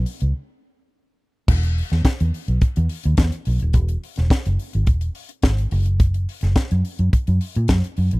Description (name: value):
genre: disco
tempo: 106 BPM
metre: 4/4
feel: straight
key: unclear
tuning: A4 = 435 Hz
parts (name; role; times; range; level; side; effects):
- vintage muted fingered electric bass; bass; 0.0-8.2 s; D#1 to A#2; -19 LUFS; equal; none
- tight funk drum kit; drums; 0.1-8.2 s; crash cymbal, hi-hat, kick drum, snare drum; -19 LUFS; equal; none
room: little or no reverb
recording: dry, close 1970s-style studio recording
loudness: -18 LUFS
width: side -24 dB against mid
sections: 0.0-1.5 A section; 1.5-8.2 A section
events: break 0.3-1.5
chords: none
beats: 0.35 0.92 | 1.48 2.05 2.61 3.18 | 3.74 4.31 4.87 5.44 | 6.00 6.57 7.13 7.70